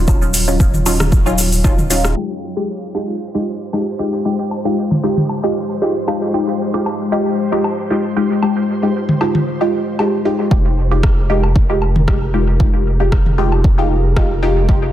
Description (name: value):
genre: dub techno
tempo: 115 BPM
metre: 4/4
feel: swing 54% on 16ths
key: F minor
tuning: A4 = 440 Hz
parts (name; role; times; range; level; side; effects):
- deep dark ambient pad; sustained chords; 0.0-14.9 s; Gb3 to Eb5; -24 LUFS; left 3 dB; chorus, built-in reverb, sidechain pumping
- filtered dub chord stab; stabs; 0.0-14.8 s; Gb3 to G4; -18 LUFS; equal; chorus, phaser, cassette tape, sidechain pumping, dub echo
- round analog bass; bass; 0.0-2.1, 10.5-14.9 s; Eb1 to F1; -17 LUFS; equal; sidechain pumping
- deep house drum kit; drums; 0.1-2.1, 11.0-14.3 s; hi-hat, rim click, shaker; -22 LUFS; equal; overdrive, low-pass filter on perc, low-pass filter on hats, low-pass filter on snare, low-pass filter on room
- electronic kick drum; drums; 0.1-1.8, 10.5-14.8 s; none; -14 LUFS; equal; overdrive
- electronic woodblock and toms; percussion; 0.1-13.6 s; none; -22 LUFS; equal; sidechain pumping on perc, sidechain pumping on toms, dub echo
- flickering grainy texture; texture; 3.3-14.9 s; Bb4 to C5; -31 LUFS; right 2 dB; built-in reverb, sidechain pumping
room: moderate lush hall reverb, RT60 2.1 s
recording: dense, heavily limited modern master, low-pass filter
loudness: -14 LUFS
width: side -12 dB against mid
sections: 0.0-2.2 A section; 2.2-10.5 B section; 10.5-14.9 A section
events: filter sweep 2.2-10.5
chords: 0.0 Ebm9; 2.2 Fm9